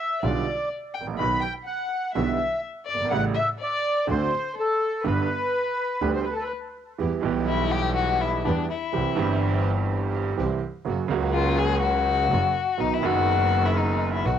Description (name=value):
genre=tango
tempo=124 BPM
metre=4/4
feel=rubato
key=G major, E minor from 7.0 s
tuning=A4 = 440 Hz
part: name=bandoneon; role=melody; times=0.0-6.5 s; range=A4 to B5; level=-27 LUFS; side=right 1 dB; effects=cassette tape, plate reverb, analog delay
part: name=warm violin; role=second line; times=0.0-14.4 s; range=D4 to B5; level=-27 LUFS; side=left 9 dB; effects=cassette tape
part: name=clear upright piano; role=accompaniment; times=0.2-14.4 s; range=F#1 to G4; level=-27 LUFS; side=right 7 dB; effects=cassette tape
part: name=rich double bass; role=bass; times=0.2-14.4 s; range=F#1 to E2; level=-27 LUFS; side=equal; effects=none
part: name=rich chamber string section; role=stabs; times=7.0-14.4 s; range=A#3 to G4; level=-36 LUFS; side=right 7 dB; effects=cassette tape
room=light reverb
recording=home recording on cassette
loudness=-22 LUFS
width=side -9 dB against mid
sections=0.0-7.0 A section; 7.0-14.4 B section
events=violin solo 7.0-14.4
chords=0.2 G7/B; 1.2 B; 2.2 Em7/B; 3.1 A7; 4.1 D7; 5.1 G; 7.0 Em; 8.9 C; 10.9 F#; 12.8 B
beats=0.23 0.72 | 1.20 1.68 2.16 2.64 | 3.13 3.61 4.09 4.57 | 5.06 5.54 6.03 6.52 | 7.00 7.49 7.97 8.46 | 8.94 9.42 9.90 10.39 | 10.87 11.35 11.83 12.31 | 12.79 13.28 13.76 14.24